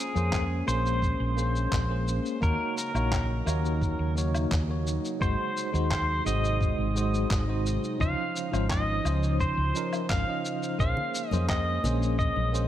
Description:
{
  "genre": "sunset chillout",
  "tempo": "86 BPM",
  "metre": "4/4",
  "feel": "straight",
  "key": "Bb minor",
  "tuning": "A4 = 440 Hz",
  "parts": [
    { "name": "pedal steel guitar", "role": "melody", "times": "0.0-12.7 s", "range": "Ab4 to F5", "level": "-32 LUFS", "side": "equal", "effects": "digital delay" },
    { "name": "bell-like tine electric piano", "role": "accompaniment", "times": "0.0-12.7 s", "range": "F3 to Eb5", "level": "-33 LUFS", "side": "equal", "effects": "medium stereo tremolo, auto-pan, vintage 12-bit sampler grit, digital delay" },
    { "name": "airy breathy pad", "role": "sustained chords", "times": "0.0-12.7 s", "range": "C3 to C5", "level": "-36 LUFS", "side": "right 1 dB", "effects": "chorus" },
    { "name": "woody fretless electric bass", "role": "bass", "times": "0.2-12.7 s", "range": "Ab1 to F2", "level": "-28 LUFS", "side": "equal", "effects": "analog chorus" },
    { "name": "electronic shaker, handclaps and woodblock", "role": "drums", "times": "0.2-12.7 s", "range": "none", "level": "-37 LUFS", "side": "left 1 dB", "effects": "none" },
    { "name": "electronic kick drum", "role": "drums", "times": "0.3-12.3 s", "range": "none", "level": "-29 LUFS", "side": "equal", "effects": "none" },
    { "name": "congas", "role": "percussion", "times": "11.0-12.5 s", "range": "none", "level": "-37 LUFS", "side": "left 2 dB", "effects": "none" }
  ],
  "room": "light reverb, digital ambience",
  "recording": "none",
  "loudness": "-25 LUFS",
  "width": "side -12 dB against mid",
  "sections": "0.0-12.7 A section",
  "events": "none",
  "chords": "0.0 Bbm9; 2.4 Ebm7; 5.2 Ab7; 8.0 Dbmaj9; 10.8 Bbm9"
}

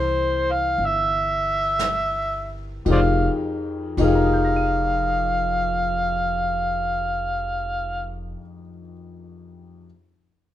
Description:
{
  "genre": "jazz ballad",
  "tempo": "54-65 BPM",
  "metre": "4/4",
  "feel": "swing 66% on 8ths",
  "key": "F minor",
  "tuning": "A4 = 440 Hz",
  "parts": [
    { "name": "overdriven harmonica", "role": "melody", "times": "0.0-8.1 s", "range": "C5 to F5", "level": "-22 LUFS", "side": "equal", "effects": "none" },
    { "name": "warm grand piano", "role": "accompaniment", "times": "0.0-9.9 s", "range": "F2 to Eb7", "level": "-26 LUFS", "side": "left 3 dB", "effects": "none" },
    { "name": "upright bass", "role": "bass", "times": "0.0-8.3 s", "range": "F1 to C2", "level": "-27 LUFS", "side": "right 1 dB", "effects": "none" },
    { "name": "jazz brush drum kit", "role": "drums", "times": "0.8-4.4 s", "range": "brushed snare drum, hi-hat, kick drum, ride cymbal, snare drum", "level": "-34 LUFS", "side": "right 3 dB", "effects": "none" }
  ],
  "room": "light reverb",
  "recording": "minimal, uncompressed stereo recording",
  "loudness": "-20 LUFS",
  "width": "side -12 dB against mid",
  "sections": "0.0-2.9 A section; 2.9-7.3 B section",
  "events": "slowing down 0.0-2.9",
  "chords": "0.0 C7; 2.9 Fm11"
}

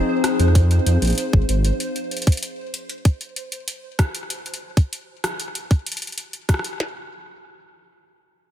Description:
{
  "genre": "IDM",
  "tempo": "96 BPM",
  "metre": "4/4",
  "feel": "straight",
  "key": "F minor",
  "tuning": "A4 = 436 Hz",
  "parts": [
    { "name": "warbly tape-like pad", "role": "sustained chords", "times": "0.0-1.8 s", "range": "F3 to F5", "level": "-25 LUFS", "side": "left 3 dB", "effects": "chorus, built-in reverb" },
    { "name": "pulsing gated texture", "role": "texture", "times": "0.0-4.3 s", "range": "C5", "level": "-31 LUFS", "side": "right 4 dB", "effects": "chorus, built-in reverb, sidechain pumping" },
    { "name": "booming analog drum machine", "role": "drums", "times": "0.2-6.8 s", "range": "hi-hat, rim click", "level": "-27 LUFS", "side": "equal", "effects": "ping-pong delay" },
    { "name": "dark detuned saw bass", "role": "bass", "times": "0.4-1.7 s", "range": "Ab1 to F2", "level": "-16 LUFS", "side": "equal", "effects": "none" },
    { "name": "glitchy drum kit", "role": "drums", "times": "0.6-6.9 s", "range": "kick drum, snare drum", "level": "-15 LUFS", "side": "equal", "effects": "none" }
  ],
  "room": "light reverb, digital ambience",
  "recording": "none",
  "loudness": "-19 LUFS",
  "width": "side -11 dB against mid",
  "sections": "0.0-6.8 A section; 6.8-8.5 B section",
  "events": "none",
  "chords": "0.0 Fm7; 1.8 N.C."
}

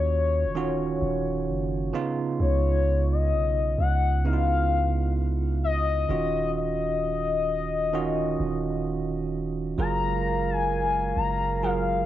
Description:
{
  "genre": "R&B",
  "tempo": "65 BPM",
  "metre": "4/4",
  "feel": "swing 54% on 16ths",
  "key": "unclear",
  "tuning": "A4 = 440 Hz",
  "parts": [
    { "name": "gliding portamento lead", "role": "melody", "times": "0.0-12.1 s", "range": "C#5 to A#5", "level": "-28 LUFS", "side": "left 6 dB", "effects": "chorus, cassette tape, tape echo" },
    { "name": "bell-like tine electric piano", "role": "accompaniment", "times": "0.0-12.1 s", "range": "C#3 to A#4", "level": "-29 LUFS", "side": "right 6 dB", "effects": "medium stereo tremolo, cassette tape" },
    { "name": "long sustained 808-style bass", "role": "bass", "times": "0.0-12.1 s", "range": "D#1 to D#2", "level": "-27 LUFS", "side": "equal", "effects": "none" },
    { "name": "glass harmonica", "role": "sustained chords", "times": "9.8-12.1 s", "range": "G#3 to E#5", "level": "-31 LUFS", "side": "right 2 dB", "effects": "cassette tape" }
  ],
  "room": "light reverb",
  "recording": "home recording on cassette",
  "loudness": "-23 LUFS",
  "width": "side -12 dB against mid",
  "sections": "0.0-12.1 A section",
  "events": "none",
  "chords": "0.0 D#m9; 1.9 C#9; 6.1 D#m9; 9.8 F#maj9"
}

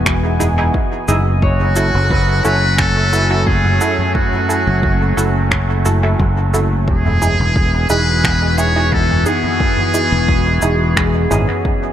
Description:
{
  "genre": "ambient dub",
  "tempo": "88 BPM",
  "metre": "4/4",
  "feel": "straight",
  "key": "unclear",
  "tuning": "A4 = 439 Hz",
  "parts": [
    { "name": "warbly tape-like pad", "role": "sustained chords", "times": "0.0-11.9 s", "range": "E3 to G#5", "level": "-22 LUFS", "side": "left 1 dB", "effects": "chorus, built-in reverb" },
    { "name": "fingered electric bass", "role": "bass", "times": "0.0-11.5 s", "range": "E1 to G#1", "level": "-16 LUFS", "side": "equal", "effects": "none" },
    { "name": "electronic kick drum", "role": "drums", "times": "0.1-11.8 s", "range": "none", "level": "-19 LUFS", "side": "equal", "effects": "overdrive" },
    { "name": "soft-mallet drum kit", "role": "drums", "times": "0.1-11.5 s", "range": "cabasa, finger snaps, toms", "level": "-22 LUFS", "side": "equal", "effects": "dub echo" },
    { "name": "filtered dub chord stab", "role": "stabs", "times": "0.4-11.5 s", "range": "D#4 to A4", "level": "-22 LUFS", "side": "right 2 dB", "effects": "chorus, cassette tape, dub echo" },
    { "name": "concert harp", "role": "arpeggios", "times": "1.1-5.3, 11.0-11.9 s", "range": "G#3 to G#5", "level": "-25 LUFS", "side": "left 2 dB", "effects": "dub echo" },
    { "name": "trumpet with metal mute", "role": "melody", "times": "1.4-11.3 s", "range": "F#4 to C#5", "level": "-19 LUFS", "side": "right 1 dB", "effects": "dub echo" }
  ],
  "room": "light reverb, small room reverb",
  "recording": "none",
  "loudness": "-12 LUFS",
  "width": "side -10 dB against mid",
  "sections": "0.0-11.9 A section",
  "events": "none",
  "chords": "0.0 Emaj7; 1.4 F#m7; 6.9 Emaj7"
}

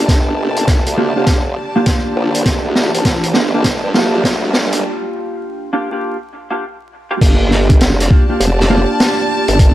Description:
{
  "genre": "glitch hop",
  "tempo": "101 BPM",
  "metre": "4/4",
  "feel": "swing 63% on 16ths",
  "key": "G minor",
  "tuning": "A4 = 440 Hz",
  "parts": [
    { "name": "mellow electric guitar", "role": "stabs", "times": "0.0-9.7 s", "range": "Bb3 to G4", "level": "-19 LUFS", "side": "right 1 dB", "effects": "analog chorus, sidechain pumping, low-pass filter, dub echo" },
    { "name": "formant-sweep wobble bass", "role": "bass", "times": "0.0-9.7 s", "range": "F1 to G2", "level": "-17 LUFS", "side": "equal", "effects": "chorus, high-pass filter" },
    { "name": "riser", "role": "sound effects", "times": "0.5-4.8 s", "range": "none", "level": "-27 LUFS", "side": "right 2 dB", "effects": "none" },
    { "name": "dark chamber string section", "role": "texture", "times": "0.0-9.7 s", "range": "G4 to A5", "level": "-22 LUFS", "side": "equal", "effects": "sidechain pumping" },
    { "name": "electronic kick drum", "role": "drums", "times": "0.1-9.7 s", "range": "none", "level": "-12 LUFS", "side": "equal", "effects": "none" },
    { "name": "street-band drum kit", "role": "drums", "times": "0.1-9.7 s", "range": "crash cymbal, hi-hat, snare drum", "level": "-18 LUFS", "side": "equal", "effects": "none" }
  ],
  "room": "studio ambience",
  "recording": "vinyl crackle, high-pass filter",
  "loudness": "-12 LUFS",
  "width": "side -14 dB against mid",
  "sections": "0.0-7.2 A section; 7.2-9.7 B section",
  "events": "build-up 0.0-7.2; drum fill 0.0-4.8; filter sweep on clean electric guitar 0.0-7.2; riser 0.5-4.8; break 4.8-7.2; drop 7.2-9.7",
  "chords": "0.0 Gm7"
}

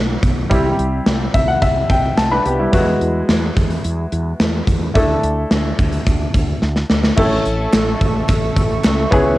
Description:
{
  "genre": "1980s-style pop",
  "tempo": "108 BPM",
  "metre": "4/4",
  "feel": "straight",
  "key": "unclear",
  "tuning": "A4 = 440 Hz",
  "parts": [
    { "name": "clear baby grand piano", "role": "accompaniment", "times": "0.0-9.4 s", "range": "F#3 to B5", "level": "-19 LUFS", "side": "left 1 dB", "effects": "cassette tape" },
    { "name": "woody fretless electric bass", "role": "bass", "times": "0.0-9.4 s", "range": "A1 to E2", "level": "-21 LUFS", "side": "equal", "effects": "analog chorus" },
    { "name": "gated 80s drum kit", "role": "drums", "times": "0.2-9.3 s", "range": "crash cymbal, hi-hat, kick drum, snare drum", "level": "-17 LUFS", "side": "equal", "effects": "cassette tape" },
    { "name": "brassy analog pad", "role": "sustained chords", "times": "7.2-9.4 s", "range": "A4 to C#6", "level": "-22 LUFS", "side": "right 2 dB", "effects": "chorus, cassette tape" },
    { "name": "group handclap", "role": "percussion", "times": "7.7-9.0 s", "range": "none", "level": "-33 LUFS", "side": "right 4 dB", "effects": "none" }
  ],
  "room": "light reverb, studio reverb",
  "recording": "home recording on cassette",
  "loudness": "-14 LUFS",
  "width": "side -17 dB against mid",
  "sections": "0.0-7.2 A section; 7.2-9.4 B section",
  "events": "grand piano fill 1.1-2.7; drum fill 6.6-7.2",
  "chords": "0.0 Bm; 0.5 C; 2.7 Eadd9; 5.0 Dsus2; 7.2 A"
}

